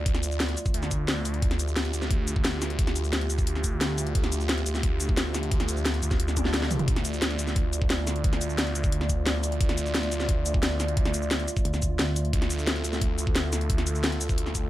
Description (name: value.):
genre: dark technical drum and bass.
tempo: 176 BPM.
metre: 4/4.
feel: straight.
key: D minor.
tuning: A4 = 440 Hz.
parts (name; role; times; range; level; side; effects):
dark analog pad; sustained chords; 0.0-14.7 s; A3 to D5; -34 LUFS; right 1 dB; chorus, sidechain pumping.
phased detuned saw bass; bass; 0.0-14.7 s; D2; -29 LUFS; equal; phaser, tube saturation.
drum and bass drum kit; drums; 0.1-14.6 s; hi-hat, shaker, snare drum, toms; -28 LUFS; left 1 dB; none.
electronic kick drum; drums; 0.1-14.6 s; none; -26 LUFS; equal; none.
swell; sound effects; 6.3-6.9 s; none; -39 LUFS; left 2 dB; none.
pulsing pluck wobble bass; bass; 11.7-12.3 s; D2; -27 LUFS; equal; chorus.
room: little or no reverb.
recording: none.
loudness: -24 LUFS.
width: side -14 dB against mid.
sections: 0.0-14.7 A section.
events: swell 6.3-6.9; drum fill 6.4-6.9.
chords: 0.0 Dm.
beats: | 0.06 0.40 0.74 1.08 | 1.42 1.76 2.11 2.45 | 2.79 3.13 3.47 3.81 | 4.15 4.49 4.83 5.17 | 5.51 5.86 6.20 6.54 | 6.88 7.22 7.56 7.90 | 8.24 8.58 8.92 9.27 | 9.61 9.95 10.29 10.63 | 10.97 11.31 11.65 11.99 | 12.33 12.67 13.02 13.36 | 13.70 14.04 14.38.